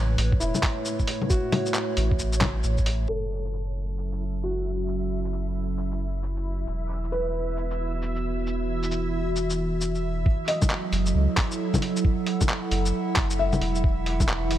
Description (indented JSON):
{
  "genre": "future garage",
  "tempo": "134 BPM",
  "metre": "4/4",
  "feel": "swing 63% on 16ths",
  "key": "F# minor",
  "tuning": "A4 = 440 Hz",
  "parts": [
    { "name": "warbly tape-like pad", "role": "sustained chords", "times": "0.0-14.6 s", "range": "A2 to F#5", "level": "-30 LUFS", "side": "right 2 dB", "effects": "chorus, built-in reverb, sidechain pumping" },
    { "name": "warm sub bass", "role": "bass", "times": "0.0-14.6 s", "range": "E1 to C#2", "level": "-27 LUFS", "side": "equal", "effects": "sidechain pumping" },
    { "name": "lo-fi sampler-style drum kit", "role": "drums", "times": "0.2-14.6 s", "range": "bongos, handclaps, hi-hat, shaker", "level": "-28 LUFS", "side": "left 2 dB", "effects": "small room ambience" },
    { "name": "electronic kick drum", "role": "drums", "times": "0.3-2.9, 10.3-14.3 s", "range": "none", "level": "-24 LUFS", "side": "equal", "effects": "small room ambience" },
    { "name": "felt-muted upright piano", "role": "accompaniment", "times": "0.4-14.0 s", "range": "E4 to E5", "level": "-32 LUFS", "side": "left 1 dB", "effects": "vintage 12-bit sampler grit, sidechain pumping, tape echo" },
    { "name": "backwards swelling texture", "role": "texture", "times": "4.1-14.6 s", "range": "E4 to E5", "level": "-37 LUFS", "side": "right 1 dB", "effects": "built-in reverb" }
  ],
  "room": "light reverb, digital ambience",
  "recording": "low-pass filter",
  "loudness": "-23 LUFS",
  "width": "side -12 dB against mid",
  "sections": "0.0-3.1 A section; 3.1-10.3 B section; 10.3-14.6 A section",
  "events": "filter sweep on ambient pad 3.1-10.3; filter sweep 3.1-10.3",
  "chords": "0.0 Asus2; 3.1 F#m7; 6.7 Esus2; 10.3 F#m7; 13.8 Esus2",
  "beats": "0.40 0.85 | 1.30 1.75 2.19 2.64 | 3.09 3.54 3.98 4.43 | 4.88 5.33 5.78 6.22 | 6.67 7.12 7.57 8.02 | 8.46 8.91 9.36 9.81 | 10.25 10.70 11.15 11.60 | 12.04 12.49 12.94 13.39 | 13.84 14.28"
}